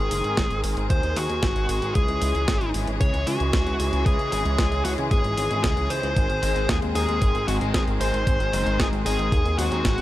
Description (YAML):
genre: italo disco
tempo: 114 BPM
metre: 4/4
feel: straight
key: C# harmonic minor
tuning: A4 = 440 Hz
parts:
  - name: dark smooth lead guitar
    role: melody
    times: 0.0-10.0 s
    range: F#4 to C#5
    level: -26 LUFS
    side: equal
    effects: overdrive, digital delay
  - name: rich studio string section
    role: sustained chords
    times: 0.0-10.0 s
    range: D#3 to G#4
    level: -29 LUFS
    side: left 1 dB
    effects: none
  - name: chorused synth bass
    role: bass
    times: 0.0-10.0 s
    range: F#1 to D#2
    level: -26 LUFS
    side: equal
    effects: none
  - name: clean 12-bit digital drum machine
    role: drums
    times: 0.1-10.0 s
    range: hi-hat, snare drum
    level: -30 LUFS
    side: right 1 dB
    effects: none
  - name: electronic kick drum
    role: drums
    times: 0.4-10.0 s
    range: none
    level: -24 LUFS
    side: equal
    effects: none
  - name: electric guitar at the edge of break-up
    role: stabs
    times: 6.4-10.0 s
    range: G#2 to F#5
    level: -30 LUFS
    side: left 4 dB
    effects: lush chorus
room: little or no reverb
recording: none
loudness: -20 LUFS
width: side -15 dB against mid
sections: 0.0-10.0 A section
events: none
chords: 0.0 G#; 2.0 C#m; 6.2 G#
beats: 0.38 0.90 1.43 | 1.95 2.48 3.01 3.53 | 4.06 4.58 5.11 5.64 | 6.16 6.69 7.22 7.74 | 8.27 8.80 9.32 9.85